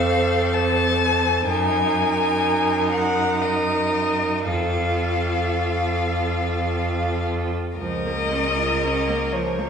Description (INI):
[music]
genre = classical, slow romantic movement for string quartet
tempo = 54-65 BPM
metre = 3/4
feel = rubato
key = unclear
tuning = A4 = 436 Hz
[part]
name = rich violin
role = melody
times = 0.0-9.7 s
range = Db5 to A5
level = -24 LUFS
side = left 4 dB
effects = none
[part]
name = rich violin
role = second line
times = 0.0-9.7 s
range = A4 to Bb4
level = -26 LUFS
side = equal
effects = none
[part]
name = rich viola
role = accompaniment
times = 0.0-9.7 s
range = F3 to F4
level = -26 LUFS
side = right 2 dB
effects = none
[part]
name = rich cello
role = bass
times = 0.0-9.7 s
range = Db2 to Gb2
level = -25 LUFS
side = right 2 dB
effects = none
[sound]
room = wet recital hall reverb, RT60 1.4 s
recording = heard from further back in the room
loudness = -19 LUFS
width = side -7 dB against mid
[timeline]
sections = 0.0-9.7 A section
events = none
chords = 0.0 F; 1.5 Ebm/Gb; 4.5 F; 7.8 Bbm/Db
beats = 0.52 | 1.48 2.42 3.42 | 4.50 5.59 6.69 | 7.78 8.83